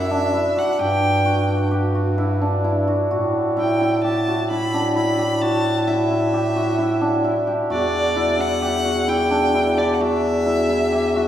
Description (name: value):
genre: contemporary instrumental, chamber music in an uneven meter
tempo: 130 BPM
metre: 5/4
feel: straight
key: unclear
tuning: A4 = 440 Hz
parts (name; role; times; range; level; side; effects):
- clear violin; melody; 0.0-11.3 s; D5 to B5; -24 LUFS; equal; none
- hammered dulcimer; arpeggios; 0.0-11.3 s; D4 to G4; -22 LUFS; equal; none
- clear bass clarinet; bass; 0.0-11.3 s; E2 to A2; -21 LUFS; equal; none
room: wet recital hall reverb, RT60 1.5 s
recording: heard from further back in the room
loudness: -17 LUFS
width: side -10 dB against mid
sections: 0.0-11.3 A section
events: none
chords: 0.0 E7sus2/F#; 0.8 G5; 3.1 A7sus4; 7.7 Em7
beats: 0.35 | 0.80 1.26 1.72 2.18 2.65 | 3.12 3.58 4.04 4.50 4.96 | 5.42 5.88 6.34 6.79 7.25 | 7.70 8.16 8.62 9.07 9.54 | 9.99 10.46 10.92